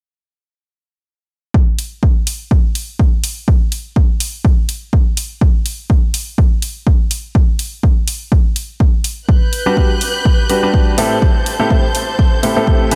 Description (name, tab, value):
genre	piano house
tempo	124 BPM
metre	4/4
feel	swing 55% on 16ths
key	unclear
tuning	A4 = 440 Hz
part	electronic kick drum	drums	1.5-12.8 s	none	-15 LUFS	equal	small room ambience
part	electronic hi-hat	drums	1.8-13.0 s	none	-25 LUFS	equal	small room ambience
part	rich studio violin section	sustained chords	9.3-13.0 s	B4 to G6	-24 LUFS	equal	sidechain pumping
part	clear upright piano	riff	9.7-13.0 s	A2 to B4	-18 LUFS	equal	sidechain pumping, analog delay
room	light reverb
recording	none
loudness	-15 LUFS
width	mono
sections	1.5-13.0 A section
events	none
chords	1.5 N.C.; 9.3 Gmaj7; 11.0 Am7